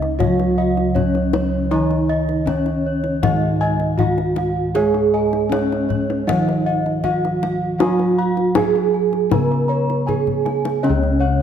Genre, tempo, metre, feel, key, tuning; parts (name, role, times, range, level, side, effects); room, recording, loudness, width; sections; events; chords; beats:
Javanese gamelan; 79 BPM; 4/4; straight; Db slendro; A4 = 438 Hz
gamelan-type bronze metallophone; melody; 0.0-11.4 s; Db4 to Cb5-45c; -21 LUFS; right 3 dB
gamelan-type bronze metallophone; accompaniment; 0.0-11.4 s; Db3 to Cb4-45c; -23 LUFS; right 1 dB
gamelan-type bronze metallophone; arpeggios; 0.0-11.4 s; Db5 to Cb6-45c; -27 LUFS; right 3 dB
gamelan-type bossed gongs; bass; 0.0-11.4 s; Db2 to Ab4+25c; -23 LUFS; left 1 dB
kendang; percussion; 0.0-11.1 s; -24 LUFS; left 7 dB
gamelan-type bossed gongs; arpeggios; 0.2-11.4 s; Db5 to Cb6-45c; -27 LUFS; left 6 dB
moderate scoring stage reverb, RT60 1.8 s; -16 LUFS; side -8 dB against mid
0.0-11.4 A section
drum fill 10.3-10.8
0.20 0.95 | 1.71 2.47 3.23 3.99 | 4.75 5.51 6.27 7.03 | 7.79 8.55 9.31 10.07 | 10.83